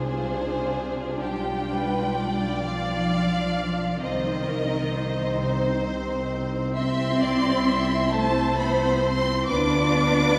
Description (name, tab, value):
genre	classical, slow romantic movement for string orchestra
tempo	44 BPM (dotted quarters)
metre	6/8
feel	rubato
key	C minor, C major from 6.8 s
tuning	A4 = 440 Hz
part	warm symphonic violin section	melody	0.0-10.4 s	C5 to D6	-31 LUFS	equal	none
part	warm symphonic violin section	second line	0.0-10.4 s	G4 to E5	-31 LUFS	equal	none
part	warm symphonic viola section	accompaniment	0.0-10.4 s	B3 to F4	-32 LUFS	equal	none
part	dark symphonic cello section	bass	0.0-10.4 s	C3 to D4	-30 LUFS	equal	none
part	warm studio double bass section	bass	0.0-10.4 s	B1 to D2	-32 LUFS	equal	none
room	wet church reverb, RT60 3.3 s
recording	none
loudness	-24 LUFS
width	mono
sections	0.0-10.4 A section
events	none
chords	0.0 Dm7b5/C; 1.2 G7/B; 4.0 Cm; 6.8 C; 9.5 Bdim/D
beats	| 1.22 2.64 | 4.01 5.38 | 6.76 8.13 | 9.50